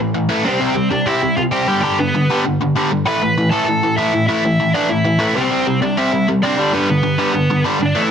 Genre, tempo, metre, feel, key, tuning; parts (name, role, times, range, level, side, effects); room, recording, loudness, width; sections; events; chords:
punk; 195 BPM; 4/4; straight; A4 = 440 Hz
biting overdriven guitar; riff; 0.0-8.1 s; G2 to C4; -16 LUFS; equal
smooth overdriven lead guitar; melody; 0.5-8.1 s; B3 to B5; -19 LUFS; equal
light reverb; dense, heavily limited modern master; -14 LUFS; side -8 dB against mid
0.0-8.0 A section
0.4 C; 1.7 G; 3.1 A5; 5.4 C; 6.6 G